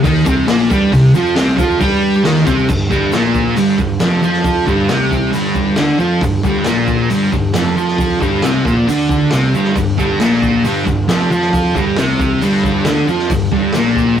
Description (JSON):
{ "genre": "garage rock duo or trio", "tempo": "136 BPM", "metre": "4/4", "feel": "straight", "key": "unclear", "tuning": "A4 = 442 Hz", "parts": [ { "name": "thick fuzz guitar", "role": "riff", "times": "0.0-14.2 s", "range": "F2 to G4", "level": "-13 LUFS", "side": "equal", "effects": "distortion" }, { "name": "fuzz fingered electric bass", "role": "bass", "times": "0.0-14.2 s", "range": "F1 to G2", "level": "-22 LUFS", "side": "equal", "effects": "overdrive, tube saturation" }, { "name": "crunchy breakbeat drum kit", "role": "drums", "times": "0.0-14.1 s", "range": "crash cymbal, hi-hat, kick drum, snare drum", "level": "-20 LUFS", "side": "equal", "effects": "none" }, { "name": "tube shaker", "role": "percussion", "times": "0.0-14.1 s", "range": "none", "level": "-40 LUFS", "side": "left 5 dB", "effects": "none" } ], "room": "moderate studio reverb, RT60 0.7 s", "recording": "rough rehearsal-room recording", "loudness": "-12 LUFS", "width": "side -9 dB against mid", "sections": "0.0-2.7 A section; 2.7-14.2 B section", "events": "none", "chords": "0.0 C5; 2.7 G5", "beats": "0.05 0.48 | 0.93 1.36 1.80 2.25 | 2.69 3.13 3.57 4.01 | 4.45 4.89 5.34 5.78 | 6.22 6.67 7.11 7.55 | 7.99 8.44 8.88 9.32 | 9.76 10.21 10.65 11.09 | 11.53 11.97 12.42 12.86 | 13.30 13.74 14.19" }